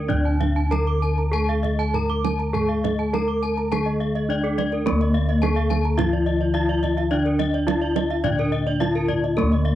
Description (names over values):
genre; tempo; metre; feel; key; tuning
Balinese gamelan; 95-106 BPM; 4/4; straight; D pelog; A4 = 440 Hz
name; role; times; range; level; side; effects
gamelan-type bronze metallophone; melody; 0.0-9.8 s; Bb3-40c to Bb4-40c; -25 LUFS; equal; none
gamelan-type bronze metallophone; accompaniment; 0.0-9.8 s; D3 to Bb3-40c; -28 LUFS; left 3 dB; none
gamelan-type bronze metallophone; arpeggios; 0.0-9.7 s; A4-45c to D6; -31 LUFS; right 7 dB; none
gamelan-type bossed gongs; bass; 0.0-9.8 s; D2 to Bb4-40c; -24 LUFS; equal; none
gamelan-type bronze metallophone; arpeggios; 0.1-9.8 s; Bb4-40c to Bb5-40c; -29 LUFS; left 5 dB; none
kendang; percussion; 0.1-9.6 s; none; -30 LUFS; right 10 dB; none
room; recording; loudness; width
small room ambience; dry, close 1970s-style studio recording; -19 LUFS; side -13 dB against mid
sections
0.0-4.9 A section; 4.9-9.8 B section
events
none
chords
none